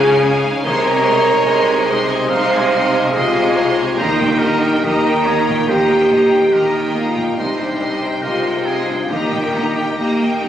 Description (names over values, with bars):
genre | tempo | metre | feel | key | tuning
cinematic | 71 BPM | 4/4 | rubato | unclear | A4 = 440 Hz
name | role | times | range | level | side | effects
rich studio violin section | melody | 0.0-10.5 s | F5 to C6 | -26 LUFS | left 2 dB | none
clear oboe | second line | 0.0-10.4 s | G4 to F5 | -24 LUFS | right 1 dB | none
rich studio violin section | second line | 0.0-10.5 s | G4 to Ab5 | -25 LUFS | equal | none
silver concert flute | second line | 0.0-10.4 s | Eb5 to C6 | -24 LUFS | left 1 dB | none
clear grand piano | accompaniment | 0.0-10.5 s | C2 to Ab4 | -24 LUFS | left 1 dB | none
warm studio viola section | accompaniment | 0.0-10.5 s | G3 to Db5 | -26 LUFS | right 1 dB | none
dark French horn section | sustained chords | 0.0-10.4 s | Eb4 to C5 | -18 LUFS | equal | none
rich studio cello section | bass | 0.0-10.5 s | C3 to Bb3 | -21 LUFS | right 2 dB | none
rich studio double bass section | bass | 0.0-10.5 s | C2 to Eb2 | -26 LUFS | right 3 dB | none
room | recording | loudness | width
moderate scoring stage reverb, RT60 1.5 s | recorded on a phone in the room, studio reverb, compression | -13 LUFS | side -10 dB against mid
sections
0.0-10.5 A section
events
none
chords
0.0 Db; 0.6 Ab/C; 4.0 Eb; 7.4 Cm; 9.1 Eb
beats
| 0.64 1.47 2.31 3.14 | 3.98 4.84 5.70 6.54 | 7.38 8.23 9.10 9.98